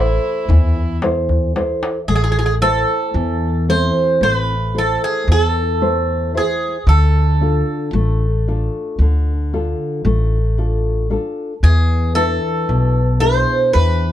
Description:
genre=greek folk, Greek bouzouki band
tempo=113 BPM (eighths)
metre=9/8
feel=straight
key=A harmonic minor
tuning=A4 = 442 Hz
part: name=Greek bouzouki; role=melody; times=0.0-14.1 s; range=G#4 to C5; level=-18 LUFS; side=right 2 dB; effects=none
part: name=warm violin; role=second line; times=0.0-1.0 s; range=E4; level=-28 LUFS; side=right 4 dB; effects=slapback echo
part: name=nylon-string guitar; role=accompaniment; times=0.0-14.1 s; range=B2 to C5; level=-21 LUFS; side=left 1 dB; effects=none
part: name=upright bass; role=bass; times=0.0-14.1 s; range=A1 to E2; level=-16 LUFS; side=equal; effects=none
part: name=darbuka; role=percussion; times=0.5-2.1 s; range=none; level=-17 LUFS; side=left 1 dB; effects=none
room=light reverb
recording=dark, warm production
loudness=-14 LUFS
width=side -12 dB against mid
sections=0.0-2.1 A section; 2.1-14.1 B section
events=drum fill 1.3-2.1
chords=0.0 Am; 6.9 Dm; 11.6 E7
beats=0.49 1.02 1.56 | 2.09 2.62 3.15 3.68 4.21 4.75 5.28 5.81 6.34 | 6.87 7.40 7.93 8.46 8.99 9.52 10.05 10.58 11.11 | 11.63 12.16 12.69 13.22 13.75

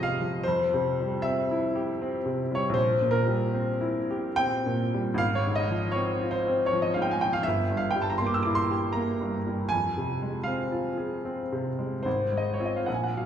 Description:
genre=classical, romantic nocturne for solo piano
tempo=66-81 BPM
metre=3/4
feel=rubato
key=F minor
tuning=A4 = 440 Hz
part: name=clear upright piano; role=solo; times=0.0-13.3 s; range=G1 to E6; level=-25 LUFS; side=equal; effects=none
room=wet recital hall reverb, RT60 1.5 s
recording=heard from further back in the room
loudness=-25 LUFS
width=side -9 dB against mid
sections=0.0-13.3 A section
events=none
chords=0.4 C/F; 2.8 C7/Bb; 5.2 Fm/Ab; 7.4 Edim/G; 9.7 Fm; 12.1 Fm/Ab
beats=| 0.43 1.21 1.99 | 2.75 3.52 4.38 | 5.18 5.94 6.69 | 7.45 8.19 8.94 | 9.71 10.47 11.26 | 12.06 12.87

